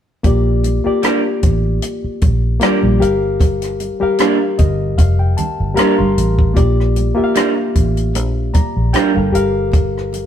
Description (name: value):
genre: lush 1970s-style soul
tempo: 76 BPM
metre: 4/4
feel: swing 54% on 16ths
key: Bb major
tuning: A4 = 440 Hz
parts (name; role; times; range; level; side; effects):
- barky reed electric piano; accompaniment; 0.2-10.3 s; G3 to C6; -18 LUFS; left 3 dB; overdrive
- vintage muted fingered electric bass; bass; 0.2-10.2 s; F1 to Bb1; -17 LUFS; equal; none
- compact cocktail drum kit; drums; 0.2-10.3 s; hi-hat, kick drum, rim click; -16 LUFS; equal; none
- congas; percussion; 0.2-10.3 s; none; -23 LUFS; right 3 dB; none
- electric guitar through a small old amp; riff; 1.0-9.1 s; G3 to Bb4; -19 LUFS; right 6 dB; spring reverb
room: light reverb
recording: band playing live in one room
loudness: -13 LUFS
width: side -9 dB against mid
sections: 0.2-10.3 A section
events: reed electric piano fill 4.2-6.6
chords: 0.2 Bb6; 3.0 Gm7; 6.6 Bb6; 9.3 Gm7